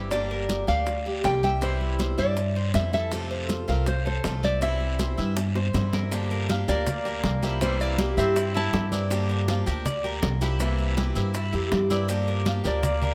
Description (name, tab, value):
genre	latin, Cuban son and guajira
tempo	160 BPM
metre	4/4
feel	straight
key	unclear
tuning	A4 = 440 Hz
part	picked swing-style acoustic guitar	accompaniment	0.0-13.1 s	C3 to G4	-36 LUFS	equal	none
part	Cuban tres	arpeggios	0.0-13.1 s	E4 to F5	-34 LUFS	equal	none
part	upright bass	bass	0.0-13.1 s	G1 to G2	-29 LUFS	equal	none
part	nylon-string guitar	melody	0.1-8.9, 12.7-13.1 s	A4 to A5	-31 LUFS	equal	none
part	bongos	percussion	0.1-13.0 s	none	-37 LUFS	equal	none
part	congas	percussion	0.1-13.1 s	none	-34 LUFS	equal	none
part	guiro	percussion	0.1-13.1 s	none	-41 LUFS	equal	none
part	maracas	percussion	0.1-13.1 s	none	-46 LUFS	equal	none
part	warm trumpet	second line	6.7-8.9, 12.7-13.1 s	G3 to E4	-36 LUFS	equal	none
room	light reverb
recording	none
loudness	-25 LUFS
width	mono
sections	0.0-6.1 A section; 6.1-13.1 B section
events	drum fill 5.4-6.1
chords	0.1 Gm; 1.6 C; 3.1 F; 4.6 C; 6.1 Gm7; 7.6 C7